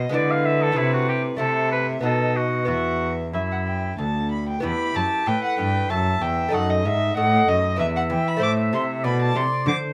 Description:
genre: classical, baroque-style sonata movement with continuo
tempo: 95 BPM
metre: 3/4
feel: straight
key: E minor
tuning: A4 = 440 Hz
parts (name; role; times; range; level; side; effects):
- dark violin; melody; 0.0-9.8 s; B4 to D6; -27 LUFS; equal; none
- lute; accompaniment; 0.0-9.9 s; D2 to C5; -30 LUFS; equal; none
- rich cello; bass; 0.0-9.7 s; D2 to E3; -27 LUFS; equal; none
- clear oboe; second line; 0.1-9.9 s; E4 to F5; -28 LUFS; equal; none
room: light reverb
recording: none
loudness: -22 LUFS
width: mono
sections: 0.0-4.6 A section; 4.6-9.9 B section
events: none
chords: 0.1 E7/D; 0.8 Am/C; 2.0 B7; 2.7 Em; 6.5 D#dim/F#; 7.8 E5; 8.4 Am

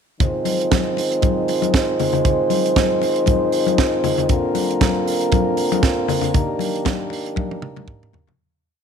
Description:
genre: disco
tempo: 117 BPM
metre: 4/4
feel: swing 56% on 16ths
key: unclear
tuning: A4 = 440 Hz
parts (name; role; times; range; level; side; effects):
- warm French horn section; sustained chords; 0.2-8.4 s; D3 to C5; -19 LUFS; right 1 dB; none
- tight funk drum kit; drums; 0.2-8.4 s; hi-hat, kick drum, snare drum, toms; -21 LUFS; right 2 dB; none
- congas; percussion; 0.2-8.4 s; none; -25 LUFS; left 12 dB; none
room: light reverb, studio ambience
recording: 1960s-style stereo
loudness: -16 LUFS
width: side -7 dB against mid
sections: 0.2-8.4 breakdown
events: fade-out 6.3-8.4; drum fill 7.4-8.4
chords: 0.2 Ab6; 4.3 Bbadd9; 6.3 Ebmaj7

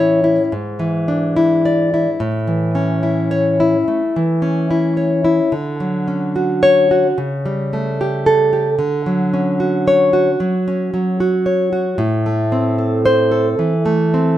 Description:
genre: romantic piece for solo classical guitar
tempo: 74 BPM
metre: 4/4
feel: rubato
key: A major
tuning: A4 = 438 Hz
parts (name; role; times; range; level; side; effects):
- nylon-string guitar; solo; 0.0-14.4 s; G#2 to D5; -14 LUFS; equal; none
room: moderate stone room reverb, RT60 1.2 s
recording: band playing live in one room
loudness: -14 LUFS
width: side -12 dB against mid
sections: 0.0-14.4 A section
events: none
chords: 0.0 A; 0.5 E7/G#; 2.2 A; 5.5 Dmaj7; 7.2 A7/C#; 8.8 Dmaj7; 12.0 Am

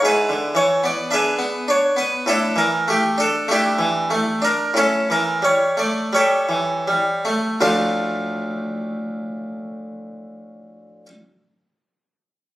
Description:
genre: classical, baroque-style suite movement for harpsichord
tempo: 38-55 BPM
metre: 4/4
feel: rubato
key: D minor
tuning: A4 = 443 Hz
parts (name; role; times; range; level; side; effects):
- harpsichord; solo; 0.0-11.1 s; D2 to F5; -18 LUFS; equal; none
room: moderate large studio reverb, RT60 1.2 s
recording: recorded on a phone in the room, club reverb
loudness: -17 LUFS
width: side -15 dB against mid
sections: 0.0-7.6 A section; 7.6-12.6 B section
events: slowing down 0.0-7.6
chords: 0.0 E7/G#; 2.2 Asus4; 4.7 A7; 7.6 Dm

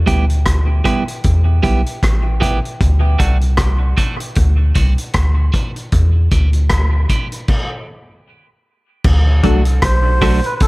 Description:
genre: dub reggae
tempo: 77 BPM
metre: 4/4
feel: swing 57% on 16ths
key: E minor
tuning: A4 = 440 Hz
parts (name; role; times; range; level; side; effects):
- soft dub sub bass; bass; 0.0-10.7 s; A1 to E2; -13 LUFS; equal; none
- clean electric guitar; accompaniment; 0.1-10.4 s; F#3 to G4; -21 LUFS; right 3 dB; high-pass filter, dub echo
- vintage drum kit; drums; 0.1-10.7 s; crash cymbal, hi-hat, kick drum, rim click; -18 LUFS; equal; none
- filtered dub chord stab; stabs; 9.4-10.4 s; D4 to A4; -24 LUFS; left 6 dB; phaser, dub echo
- melodica; melody; 9.8-10.7 s; A4 to C5; -19 LUFS; right 1 dB; dub echo
room: small room ambience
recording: echo-heavy mix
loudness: -12 LUFS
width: side -22 dB against mid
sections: 0.0-9.0 A section; 9.0-10.7 B section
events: filter sweep on clean electric guitar 0.0-9.0; stop 7.5-9.0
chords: 0.0 Em; 2.8 D; 5.9 Em; 9.0 D

